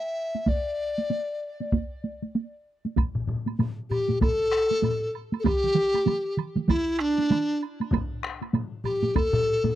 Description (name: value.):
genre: japanese traditional, taiko drum ensemble.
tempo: 97 BPM.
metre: 4/4.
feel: swing 60% on 16ths.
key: unclear.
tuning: A4 = 441 Hz.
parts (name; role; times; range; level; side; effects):
mellow hollow large dizi; melody; 0.0-9.8 s; D4 to E5; -26 LUFS; left 1 dB; tape echo.
taiko ensemble; percussion; 0.3-9.8 s; none; -28 LUFS; right 3 dB; none.
taiko ensemble; percussion; 0.5-9.3 s; none; -28 LUFS; equal; none.
taiko ensemble; percussion; 3.0-9.8 s; none; -29 LUFS; left 2 dB; none.
woodblock; percussion; 3.0-9.3 s; none; -38 LUFS; right 18 dB; none.
taiko ensemble; percussion; 5.5-7.5 s; none; -28 LUFS; right 5 dB; none.
room: light reverb.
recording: dry, close 1970s-style studio recording.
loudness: -24 LUFS.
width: side -13 dB against mid.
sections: 0.0-3.0 A section; 3.0-9.8 B section.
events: none.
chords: none.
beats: | 0.47 1.10 1.72 2.35 | 2.97 3.59 4.22 4.84 | 5.46 6.08 6.70 7.31 | 7.93 8.54 9.16.